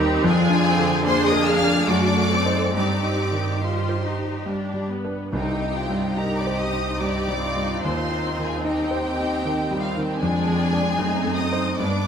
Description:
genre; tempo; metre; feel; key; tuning
classical, romantic movement for piano and orchestra; 66-79 BPM; 3/4; rubato; C minor; A4 = 438 Hz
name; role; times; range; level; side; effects
warm concert grand piano; melody; 0.0-12.1 s; C2 to D5; -24 LUFS; equal; none
rich symphonic viola section; accompaniment; 0.0-12.1 s; Ab3 to F4; -28 LUFS; right 1 dB; none
rich studio double bass section; bass; 0.0-12.1 s; C2 to G2; -29 LUFS; right 3 dB; none
rich symphonic cello section; bass; 0.0-12.1 s; C4 to A4; -28 LUFS; right 1 dB; none
warm symphonic violin section; melody; 0.3-12.1 s; F5 to F6; -28 LUFS; left 2 dB; none
warm symphonic violin section; second line; 0.3-12.1 s; F4 to F5; -30 LUFS; left 3 dB; none
timpani; percussion; 5.3-6.5 s; C3; -33 LUFS; left 2 dB; none
room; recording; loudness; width
moderate scoring stage reverb, RT60 2.0 s; none; -20 LUFS; side -7 dB against mid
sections
0.0-12.1 A section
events
none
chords
0.2 Ddim/F; 1.9 F#dim7; 2.7 Cm/G; 4.5 G; 5.3 Cm; 7.8 Cm/Eb; 10.2 Ddim/F; 11.0 F#dim7

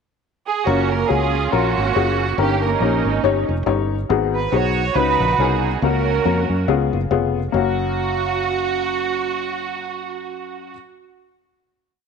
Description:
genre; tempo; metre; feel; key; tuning
uptempo gospel; 140 BPM; 4/4; swing 57% on 8ths; F# major; A4 = 440 Hz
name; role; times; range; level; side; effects
muted studio string section; melody; 0.5-10.7 s; A#3 to C#5; -21 LUFS; right 8 dB; none
warm upright piano; accompaniment; 0.7-10.7 s; F#2 to E#5; -22 LUFS; left 12 dB; none
fingered electric bass; bass; 0.7-10.7 s; E#1 to F#2; -22 LUFS; right 1 dB; none
room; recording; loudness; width
moderate echo chamber reverb, RT60 1.5 s, small room ambience; 1960s-style stereo with parts hard left and right; -17 LUFS; side -6 dB against mid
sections
0.0-0.7 pickup bar; 0.7-7.5 breakdown; 7.5-11.0 final chord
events
none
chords
0.0 N.C.; 0.7 F#maj7; 2.4 D#7/G; 4.1 G#m7; 5.0 C#9sus4; 5.8 F#/C#; 6.7 C#7; 7.5 F#maj7

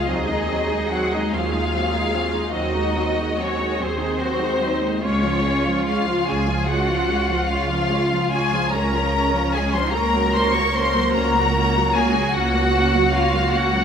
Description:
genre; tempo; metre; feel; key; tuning
classical, slow romantic movement for string orchestra; 49 BPM (dotted quarters); 12/8; rubato; Db major; A4 = 442 Hz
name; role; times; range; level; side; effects
clear symphonic violin section; melody; 0.0-13.8 s; C5 to Db6; -23 LUFS; left 3 dB; none
clear symphonic violin section; second line; 0.0-13.8 s; C4 to Db5; -26 LUFS; left 2 dB; none
rich symphonic viola section; accompaniment; 0.0-13.8 s; F3 to F4; -24 LUFS; right 1 dB; none
rich symphonic cello section; bass; 0.0-13.8 s; Db4 to Bb4; -27 LUFS; right 2 dB; none
rich symphonic double bass section; bass; 0.1-13.8 s; Db2 to Eb2; -25 LUFS; right 2 dB; none
room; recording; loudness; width
wet scoring stage reverb, RT60 1.5 s; minimal, uncompressed stereo recording; -18 LUFS; side -7 dB against mid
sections
0.0-13.8 A section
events
none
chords
0.1 Ab7/Eb; 5.0 Db; 10.0 Gb/Db

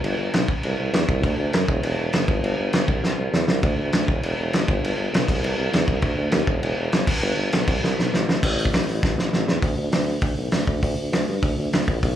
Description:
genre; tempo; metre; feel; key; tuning
punk rock; 200 BPM; 4/4; straight; unclear; A4 = 440 Hz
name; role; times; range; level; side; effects
clear tuba; bass; 0.0-12.2 s; E1 to G2; -24 LUFS; equal; none
loose indie drum kit; drums; 0.0-12.1 s; crash cymbal, hi-hat, kick drum, snare drum; -22 LUFS; equal; slapback echo
room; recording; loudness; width
little or no reverb; live gig heard through the venue's PA, club reverb; -20 LUFS; side -11 dB against mid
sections
0.0-8.4 A section; 8.4-9.6 B section; 9.6-12.2 C section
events
drum fill 3.0-3.6, 7.8-8.4, 9.0-9.6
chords
none

